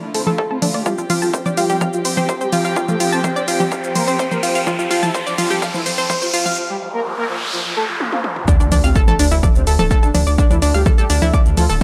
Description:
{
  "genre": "melodic techno",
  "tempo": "126 BPM",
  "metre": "4/4",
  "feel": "straight",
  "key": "D minor",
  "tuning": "A4 = 438 Hz",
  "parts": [
    { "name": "mellow synth brass", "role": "melody", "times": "0.0-11.8 s", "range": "C3 to C5", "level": "-28 LUFS", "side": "equal", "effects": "chorus, phaser, tape echo" },
    { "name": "warm chamber string section", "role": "sustained chords", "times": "0.0-6.6 s", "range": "D3 to G5", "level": "-28 LUFS", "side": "equal", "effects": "vintage 12-bit sampler grit, sidechain pumping, low-pass filter" },
    { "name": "warbly tape-like pad", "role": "texture", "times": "0.1-11.8 s", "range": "D4 to C5", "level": "-33 LUFS", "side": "equal", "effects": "none" },
    { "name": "analog pluck", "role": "arpeggios", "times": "0.1-11.8 s", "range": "D4 to A5", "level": "-23 LUFS", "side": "equal", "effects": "chorus, sidechain pumping, tape echo" },
    { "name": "punchy analog drum machine", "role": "drums", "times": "0.1-11.8 s", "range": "congas, hi-hat, shaker, toms", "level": "-25 LUFS", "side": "equal", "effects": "overdrive" },
    { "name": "electronic kick drum", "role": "drums", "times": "0.4-11.8 s", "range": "none", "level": "-18 LUFS", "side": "equal", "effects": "overdrive, high-pass filter on kick" },
    { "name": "riser, noise sweep and sub drop", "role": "sound effects", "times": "1.9-10.4 s", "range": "none", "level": "-26 LUFS", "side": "equal", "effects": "none" },
    { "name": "round analog bass", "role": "bass", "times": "8.6-11.8 s", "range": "D1 to D2", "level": "-19 LUFS", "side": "equal", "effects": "sidechain pumping" }
  ],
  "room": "light reverb, digital ambience",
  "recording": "dry, gritty hardware recording, high-pass filter",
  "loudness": "-17 LUFS",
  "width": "mono",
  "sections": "0.0-8.5 A section; 8.5-11.8 B section",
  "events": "build-up 0.0-8.5; filter sweep on synth arpeggio sound 0.0-8.5; filter sweep on analog polysynth 0.0-8.5; filter sweep 0.0-8.5; riser 1.9-6.6; break 6.6-8.5; noise sweep 6.6-8.5; drum fill 8.0-8.5; drop 8.5-11.8; impact 8.5-10.4",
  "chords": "0.0 Dm; 0.9 Fsus2; 8.5 Dm",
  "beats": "0.38 | 0.86 1.34 1.81 2.29 | 2.77 3.24 3.72 4.19 | 4.67 5.15 5.62 6.10 | 6.57 7.05 7.53 8.00 | 8.48 8.96 9.43 9.91 | 10.38 10.86 11.34 11.81"
}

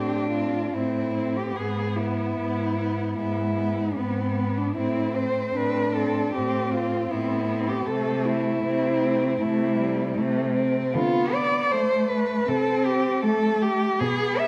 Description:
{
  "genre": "classical, lyrical piece for cello ensemble",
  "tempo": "77 BPM",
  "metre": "4/4",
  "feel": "uneven beats, rubato",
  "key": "A minor",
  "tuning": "A4 = 438 Hz",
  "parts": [
    { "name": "dark cello", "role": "melody", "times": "0.0-14.5 s", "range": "C4 to E5", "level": "-28 LUFS", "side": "equal", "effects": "none" },
    { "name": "warm cello", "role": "second line", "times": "0.0-13.8 s", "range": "A3 to C4", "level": "-35 LUFS", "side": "equal", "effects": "none" },
    { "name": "warm cello", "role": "accompaniment", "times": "0.0-14.5 s", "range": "G3 to D4", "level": "-30 LUFS", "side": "equal", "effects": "none" },
    { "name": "rich cello", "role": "bass", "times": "0.0-14.5 s", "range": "G#2 to D3", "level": "-31 LUFS", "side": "equal", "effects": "none" }
  ],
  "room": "moderate scoring stage reverb, RT60 1.9 s",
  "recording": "none",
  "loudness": "-25 LUFS",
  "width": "mono",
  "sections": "0.0-14.5 A section",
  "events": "none",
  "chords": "0.0 Am; 1.6 E/G#; 4.7 Am; 7.9 Am/C; 10.9 D5; 12.5 Am/C",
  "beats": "0.74 | 1.56 2.37 3.17 3.96 | 4.75 5.55 6.34 7.10 | 7.87 8.63 9.41 10.18 | 10.95 11.72 12.48 13.23 | 14.01"
}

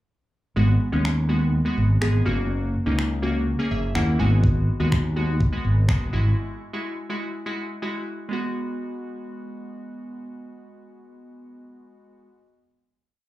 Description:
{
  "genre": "dance-pop",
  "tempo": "124 BPM",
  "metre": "4/4",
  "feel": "straight",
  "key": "G# minor",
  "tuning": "A4 = 440 Hz",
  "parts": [
    { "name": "glassy digital keys", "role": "accompaniment", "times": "0.6-12.3 s", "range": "G#3 to G#5", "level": "-27 LUFS", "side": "equal", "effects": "chorus, sidechain pumping, slapback echo" },
    { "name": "fretless electric bass", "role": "bass", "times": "0.6-6.3 s", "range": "F#1 to D#2", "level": "-21 LUFS", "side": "equal", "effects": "analog chorus, sidechain pumping" },
    { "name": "clean 12-bit digital drum machine", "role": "drums", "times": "1.1-6.0 s", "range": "finger snaps, kick drum", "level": "-23 LUFS", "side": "equal", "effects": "none" }
  ],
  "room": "little or no reverb",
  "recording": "live gig heard through the venue's PA, club reverb",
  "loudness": "-21 LUFS",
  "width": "side -16 dB against mid",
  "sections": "0.6-8.3 verse; 8.3-12.2 final chord",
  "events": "synth keys fill 3.5-4.4",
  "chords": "0.6 G#m7; 2.3 F#; 4.2 G#m7; 6.1 Eadd9/G#; 8.3 G#m7",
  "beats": "| 0.56 1.05 1.53 2.02 | 2.50 2.98 3.47 3.95 | 4.43 4.92 5.40 5.89 | 6.37 6.86 7.34 7.82 | 8.31 8.79 9.27 9.76 | 10.24 10.73 11.21 11.69"
}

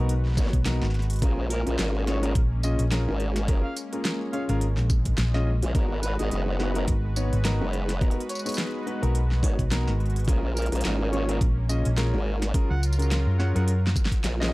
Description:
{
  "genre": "glitch hop",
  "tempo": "106 BPM",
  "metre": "4/4",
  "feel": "swing 57% on 16ths",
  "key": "unclear",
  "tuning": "A4 = 440 Hz",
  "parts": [
    { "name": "warm analog pad", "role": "sustained chords", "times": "0.0-14.5 s", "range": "F#3 to B4", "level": "-36 LUFS", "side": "equal", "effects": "chorus, tremolo, sidechain pumping" },
    { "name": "dark grand piano", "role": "stabs", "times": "0.0-14.5 s", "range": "B3 to D#5", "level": "-32 LUFS", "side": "left 1 dB", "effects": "sidechain pumping, tape echo" },
    { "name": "hollow-body short-scale fingered electric bass", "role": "bass", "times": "0.0-13.9 s", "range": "G#1 to F#2", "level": "-24 LUFS", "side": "equal", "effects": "tube saturation" },
    { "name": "pop drum kit", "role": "drums", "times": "0.1-14.5 s", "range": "hi-hat, snare drum, tambourine", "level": "-32 LUFS", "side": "equal", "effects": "none" },
    { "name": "formant-sweep wobble bass", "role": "bass", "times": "0.4-14.5 s", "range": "F#1 to A#1", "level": "-26 LUFS", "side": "equal", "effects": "chorus, overdrive" },
    { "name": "electronic kick drum", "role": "drums", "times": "0.4-14.2 s", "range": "none", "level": "-24 LUFS", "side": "equal", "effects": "none" },
    { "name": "overdriven harmonica", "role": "melody", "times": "1.5-13.6 s", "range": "A#4 to F#5", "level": "-38 LUFS", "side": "right 1 dB", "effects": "tape echo" }
  ],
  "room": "digital ambience",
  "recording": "dry, gritty hardware recording, vinyl crackle",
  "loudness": "-22 LUFS",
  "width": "side -20 dB against mid",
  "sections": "0.0-14.5 A section",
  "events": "drum fill 13.7-14.5",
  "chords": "0.0 G#m7; 1.2 A#m7; 5.8 G#m7; 10.3 A#m7; 12.5 F#maj7",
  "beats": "0.09 0.66 | 1.22 1.79 2.35 2.92 | 3.49 4.05 4.62 5.18 | 5.75 6.32 6.88 7.45 | 8.01 8.58 9.15 9.71 | 10.28 10.85 11.41 11.98 | 12.54 13.11 13.68 14.24"
}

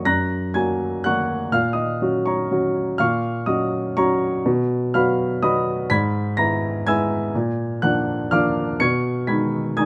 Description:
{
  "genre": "classical, piano waltz",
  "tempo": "123 BPM",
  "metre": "3/4",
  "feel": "rubato",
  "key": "F# major",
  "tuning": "A4 = 440 Hz",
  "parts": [
    { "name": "warm grand piano", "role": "solo", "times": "0.0-9.9 s", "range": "F#2 to Db7", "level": "-21 LUFS", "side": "equal", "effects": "none" }
  ],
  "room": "little or no reverb",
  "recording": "close, detailed microphones",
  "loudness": "-21 LUFS",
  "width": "mono",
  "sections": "0.0-9.9 A section",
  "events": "none",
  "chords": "0.0 F#; 1.5 F#/A#; 4.5 B; 5.9 E/G#; 7.3 Bb; 8.8 Abm/Cb",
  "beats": "| 0.05 0.54 1.04 | 1.53 2.01 2.51 | 2.99 3.46 3.96 | 4.45 4.93 5.42 | 5.89 6.37 6.86 | 7.34 7.82 8.31 | 8.79 9.27 9.77"
}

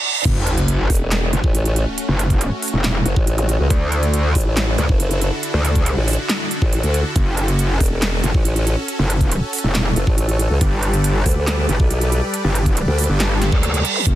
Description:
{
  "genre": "heavy wobble dubstep",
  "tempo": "139 BPM",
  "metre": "4/4",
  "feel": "half-time",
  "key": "F# phrygian",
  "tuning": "A4 = 441 Hz",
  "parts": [
    { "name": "reverse cymbal, sub drop and zap", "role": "sound effects", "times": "0.0-3.5, 13.4-14.1 s", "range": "none", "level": "-23 LUFS", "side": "right 2 dB", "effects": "none" },
    { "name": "supersaw chords", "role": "sustained chords", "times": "0.2-14.2 s", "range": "D3 to D5", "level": "-26 LUFS", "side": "equal", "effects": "sidechain pumping" },
    { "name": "metallic wobble bass", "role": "bass", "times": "0.3-14.2 s", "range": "E1 to D2", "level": "-17 LUFS", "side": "equal", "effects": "distortion, chorus, overdrive" },
    { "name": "big-room dance drum kit", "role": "drums", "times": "0.3-14.2 s", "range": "crash cymbal, handclaps, hi-hat, snare drum", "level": "-24 LUFS", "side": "right 1 dB", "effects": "overdrive, high-pass filter on hats, high-pass filter on cymbals, high-pass filter on snare, high-pass filter on room" },
    { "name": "electronic kick drum", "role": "drums", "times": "0.3-14.2 s", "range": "none", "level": "-17 LUFS", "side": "equal", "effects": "none" },
    { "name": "formant-sweep wobble bass", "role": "bass", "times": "0.9-13.1 s", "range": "E1 to D2", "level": "-18 LUFS", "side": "equal", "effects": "chorus, overdrive" }
  ],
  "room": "little or no reverb",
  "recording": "dense, heavily limited modern master, high-pass filter",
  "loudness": "-16 LUFS",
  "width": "side -14 dB against mid",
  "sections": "0.3-14.2 A section",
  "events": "reverse cymbal 0.0, 13.4-14.1; stop 0.0; drop 0.3-14.2; impact 0.3-2.0",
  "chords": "0.3 F#m; 3.7 Dadd9; 7.2 F#m; 10.6 Gadd9",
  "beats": "| 0.25 0.68 1.11 1.55 | 1.98 2.41 2.84 3.27 | 3.70 4.14 4.57 5.00 | 5.43 5.86 6.29 6.73 | 7.16 7.59 8.02 8.45 | 8.88 9.32 9.75 10.18 | 10.61 11.04 11.47 11.91 | 12.34 12.77 13.20 13.63 | 14.06"
}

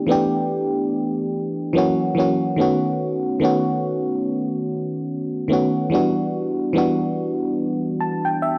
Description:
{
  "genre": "R&B",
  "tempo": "72 BPM",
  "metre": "4/4",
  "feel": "swing 58% on 16ths",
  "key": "B minor",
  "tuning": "A4 = 442 Hz",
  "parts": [
    { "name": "FM electric piano", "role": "solo", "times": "0.0-8.6 s", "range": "D#3 to A5", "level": "-22 LUFS", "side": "equal", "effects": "chorus" }
  ],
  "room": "light reverb",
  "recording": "home recording on cassette",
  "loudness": "-22 LUFS",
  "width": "mono",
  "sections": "0.0-8.6 A section",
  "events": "FM electric piano fill 7.6-8.6",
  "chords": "0.0 A7sus4; 1.8 F#7; 2.6 B7; 5.9 Em7",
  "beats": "0.09 0.92 1.76 | 2.59 3.42 4.26 5.09 | 5.92 6.76 7.59 8.42"
}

